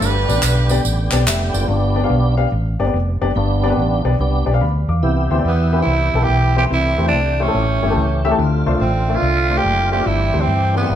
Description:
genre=uptempo gospel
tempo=143 BPM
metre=4/4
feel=swing 66% on 8ths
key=C major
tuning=A4 = 440 Hz
part: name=warm saxophone section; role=melody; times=0.0-0.9 s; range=D4 to B4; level=-22 LUFS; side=right 4 dB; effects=none
part: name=dark baby grand piano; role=accompaniment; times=0.0-11.0 s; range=G2 to D6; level=-21 LUFS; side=left 4 dB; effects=none
part: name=tonewheel organ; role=sustained chords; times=0.0-11.0 s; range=D3 to G4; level=-23 LUFS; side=right 2 dB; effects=slow rotary speaker, overdrive, chorus vibrato
part: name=hollow-body short-scale fingered electric bass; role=bass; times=0.0-11.0 s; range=F1 to G2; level=-18 LUFS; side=equal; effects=none
part: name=tambourine and handclaps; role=percussion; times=0.0-1.6 s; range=none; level=-23 LUFS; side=right 1 dB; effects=none
part: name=growling tenor saxophone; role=melody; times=5.5-11.0 s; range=B3 to G4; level=-19 LUFS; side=right 3 dB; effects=none
room=wet stone room reverb, RT60 1.3 s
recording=band playing live in one room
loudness=-14 LUFS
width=side -10 dB against mid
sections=0.0-1.7 A section; 1.7-5.0 B section; 5.0-11.0 C section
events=tonewheel organ solo 1.7-5.0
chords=0.0 G; 5.0 Cmaj7; 6.7 Am7/C; 7.5 A7; 8.4 Dm7; 10.1 C/G

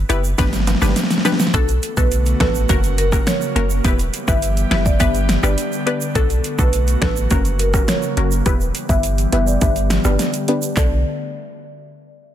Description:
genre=dancehall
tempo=104 BPM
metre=4/4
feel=straight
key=B minor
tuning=A4 = 441 Hz
part: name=punchy sub bass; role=bass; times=0.0-11.0 s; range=E1 to B1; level=-19 LUFS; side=equal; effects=none
part: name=punchy chord stab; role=accompaniment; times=0.1-11.0 s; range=A#3 to B4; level=-24 LUFS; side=left 3 dB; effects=chorus, low-pass filter
part: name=pop drum kit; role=drums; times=0.1-10.9 s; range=finger snaps, handclaps, hi-hat, kick drum, rim click, snare drum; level=-19 LUFS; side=equal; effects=overdrive
part: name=egg shaker and timbales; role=percussion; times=0.1-11.0 s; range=none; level=-31 LUFS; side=right 10 dB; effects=none
part: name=marimba with medium mallets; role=melody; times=1.5-11.0 s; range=A4 to E5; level=-25 LUFS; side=equal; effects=low-pass filter, ping-pong delay
part: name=airy breathy pad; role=sustained chords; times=1.8-11.0 s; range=C#3 to G4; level=-26 LUFS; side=left 1 dB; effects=chorus, sidechain pumping, low-pass filter
room=little or no reverb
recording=dense, heavily limited modern master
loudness=-15 LUFS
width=side -11 dB against mid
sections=0.0-1.5 A section; 1.5-10.8 B section; 10.8-12.3 C section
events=drum fill 0.4-1.5; filter sweep 1.5-10.8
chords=0.4 G; 1.5 Bm7; 2.7 F#; 3.8 Em; 5.0 G; 6.2 Bm7; 7.3 F#; 8.5 Em; 9.6 G; 10.8 Bm7

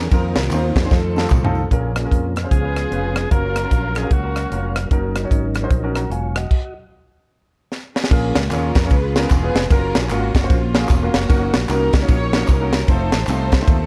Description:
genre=uptempo gospel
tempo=151 BPM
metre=4/4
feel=swing 62% on 8ths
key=Bb minor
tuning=A4 = 444 Hz
part: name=warm studio string section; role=melody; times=0.0-4.9, 7.9-13.9 s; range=Bb3 to Db5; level=-28 LUFS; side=equal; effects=none
part: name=tonewheel organ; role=sustained chords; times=0.0-6.7 s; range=Eb3 to F5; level=-31 LUFS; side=equal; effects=slow rotary speaker, chorus vibrato
part: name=fingered electric bass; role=bass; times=0.0-13.9 s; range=E1 to F2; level=-24 LUFS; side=equal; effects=none
part: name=warm grand piano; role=accompaniment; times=0.1-13.8 s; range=Bb2 to Bb5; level=-27 LUFS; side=equal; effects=none
part: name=tight funk drum kit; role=drums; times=0.1-13.8 s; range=crash cymbal, hi-hat, kick drum, ride cymbal, rim click, snare drum, toms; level=-20 LUFS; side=equal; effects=none
part: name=tambourine and handclaps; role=percussion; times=0.1-1.6, 8.1-13.8 s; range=none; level=-37 LUFS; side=equal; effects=none
part: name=clear alto saxophone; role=melody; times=2.5-4.8 s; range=Gb4 to Bb4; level=-29 LUFS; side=equal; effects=none
room=light reverb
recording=dark, warm production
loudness=-18 LUFS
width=mono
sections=0.0-1.7 A section; 1.7-8.1 B section; 8.1-13.9 A section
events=drum fill 0.9-1.7, 7.7-8.1; stop 6.5-8.1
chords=0.1 F7sus4; 0.9 F7; 1.7 Bbm7; 2.5 Db7; 3.3 Gbmaj7; 4.9 Ebm7/Gb; 6.5 N.C.; 8.1 Bbm7; 8.9 Db7; 9.7 Gbmaj7; 11.3 Ebm7/Gb; 12.9 F7

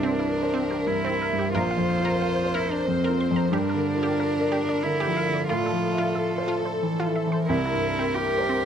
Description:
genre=neoclassical piano and strings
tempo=91 BPM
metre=3/4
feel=rubato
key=F major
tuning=A4 = 441 Hz
part: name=warm chamber violin section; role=melody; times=0.0-8.7 s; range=A4 to C5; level=-30 LUFS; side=left 1 dB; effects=none
part: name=warm cello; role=second line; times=0.0-8.7 s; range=C4 to G4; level=-26 LUFS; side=right 1 dB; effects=none
part: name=felt-muted upright piano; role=accompaniment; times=0.0-8.7 s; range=Bb1 to E5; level=-26 LUFS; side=equal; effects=none
part: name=deep dark ambient pad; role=sustained chords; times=0.0-8.7 s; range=E3 to D5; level=-37 LUFS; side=left 3 dB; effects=chorus, built-in reverb
part: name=resonant blip pluck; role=arpeggios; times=0.0-8.6 s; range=C4 to C6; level=-32 LUFS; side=right 1 dB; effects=chorus, slapback echo
room=light reverb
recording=close, detailed microphones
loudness=-22 LUFS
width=side -8 dB against mid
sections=0.0-8.7 A section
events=none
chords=0.0 C7; 1.5 Bbsus2; 3.5 Gm7; 5.5 Fmaj7/A; 7.5 C7

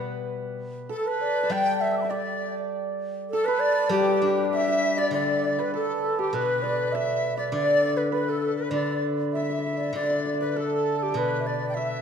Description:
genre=chinese traditional, Chinese chamber ensemble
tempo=100 BPM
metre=2/4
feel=rubato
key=unclear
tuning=A4 = 438 Hz
part: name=hammered dulcimer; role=second line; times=0.0-12.0 s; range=G4 to A5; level=-30 LUFS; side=right 7 dB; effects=none
part: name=steel-string zither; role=accompaniment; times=0.0-12.0 s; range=B2 to D4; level=-29 LUFS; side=left 5 dB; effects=none
part: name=bright xiao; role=melody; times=0.9-12.0 s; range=G4 to G5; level=-28 LUFS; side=right 2 dB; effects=none
part: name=breathy bright large dizi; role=second line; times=0.9-12.0 s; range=G4 to E6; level=-29 LUFS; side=left 3 dB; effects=none
room=wet concert hall reverb, RT60 2.4 s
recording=dark, warm production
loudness=-23 LUFS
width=side -7 dB against mid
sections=0.0-5.1 A section; 5.1-12.0 B section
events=none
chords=none

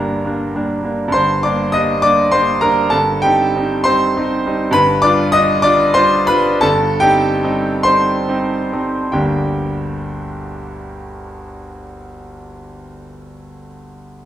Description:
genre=classical, romantic character piece for solo piano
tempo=44-69 BPM (dotted quarters)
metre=6/8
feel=rubato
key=G minor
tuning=A4 = 439 Hz
part: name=clear concert grand piano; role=solo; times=0.0-14.3 s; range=G1 to Eb6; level=-14 LUFS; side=equal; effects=none
room=moderate recital hall reverb, RT60 1.5 s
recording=minimal, uncompressed stereo recording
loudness=-13 LUFS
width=side -11 dB against mid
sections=0.0-1.1 A section; 1.1-9.1 B section; 9.1-13.7 C section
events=slowing down 3.9-9.1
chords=0.0 Gm; 2.9 Cm/G; 4.8 G7; 6.6 Cm/G; 9.1 Gm

